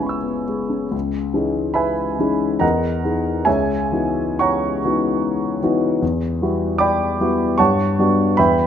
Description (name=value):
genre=classical, impressionist solo piano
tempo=61-78 BPM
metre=3/4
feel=rubato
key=C# dorian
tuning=A4 = 442 Hz
part: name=warm grand piano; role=solo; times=0.0-8.7 s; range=C#2 to E6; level=-17 LUFS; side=equal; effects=none
room=light reverb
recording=close, detailed microphones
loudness=-17 LUFS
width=side -8 dB against mid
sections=0.9-8.7 A section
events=none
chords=0.0 C#m7; 0.9 C#m9; 2.6 Emaj7; 3.5 C#m11; 6.0 Em9; 7.6 Gmaj7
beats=0.02 | 0.93 1.78 2.62 | 3.46 4.40 5.22 | 6.02 6.82 7.59 | 8.38